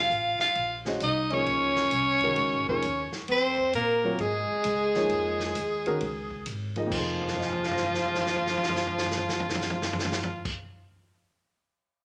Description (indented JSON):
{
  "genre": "modal jazz",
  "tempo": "132 BPM",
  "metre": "4/4",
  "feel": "swing 66% on 8ths",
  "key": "F minor",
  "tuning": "A4 = 439 Hz",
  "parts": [
    { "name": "growling soprano saxophone", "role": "melody", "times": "0.0-10.5 s", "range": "F4 to F5", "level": "-30 LUFS", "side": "equal", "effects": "none" },
    { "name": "clear alto saxophone", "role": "second line", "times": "0.0-10.5 s", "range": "F3 to F4", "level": "-33 LUFS", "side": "equal", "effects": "none" },
    { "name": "warm baby grand piano", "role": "accompaniment", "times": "0.0-10.7 s", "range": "F2 to Eb7", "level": "-35 LUFS", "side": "equal", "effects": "none" },
    { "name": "upright bass", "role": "bass", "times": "0.0-10.5 s", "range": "F1 to Bb2", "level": "-41 LUFS", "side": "equal", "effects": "none" },
    { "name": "vintage drum kit", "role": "drums", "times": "0.1-10.5 s", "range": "crash cymbal, hi-hat, kick drum, ride cymbal, snare drum, toms", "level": "-37 LUFS", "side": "equal", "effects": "none" }
  ],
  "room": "moderate large studio reverb, RT60 1.4 s",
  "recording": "none",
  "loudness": "-28 LUFS",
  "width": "mono",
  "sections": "0.0-6.9 A section; 6.9-10.5 B section",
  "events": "drum fill 7.1-10.4",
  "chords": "0.0 Dbadd9/F; 6.9 Fm7"
}